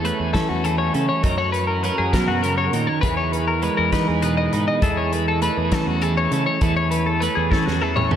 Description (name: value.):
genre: math rock and midwest emo.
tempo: 67 BPM (dotted quarters).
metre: 6/8.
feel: straight.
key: unclear.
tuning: A4 = 436 Hz.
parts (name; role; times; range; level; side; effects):
twelve-string electric guitar; accompaniment; 0.0-8.2 s; F#2 to B4; -23 LUFS; right 4 dB; none.
twelve-string electric guitar; arpeggios; 0.0-8.2 s; F#4 to D#5; -22 LUFS; left 4 dB; analog delay.
growling fingered electric bass; bass; 0.0-8.2 s; E2 to F#3; -24 LUFS; equal; overdrive.
loose indie drum kit; drums; 0.0-8.2 s; hi-hat, kick drum, snare drum, toms; -26 LUFS; equal; none.
room: wet cathedral reverb, RT60 6.5 s.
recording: dreamy mix soaked in reverb.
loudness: -18 LUFS.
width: side -9 dB against mid.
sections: 0.0-8.2 A section.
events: drum fill 7.5-8.2.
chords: 0.0 Amaj7/E; 1.2 F#; 3.0 Emaj7; 4.8 Amaj7/E.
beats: 0.35 | 1.25 2.14 | 3.04 3.93 | 4.83 5.73 | 6.62 7.52.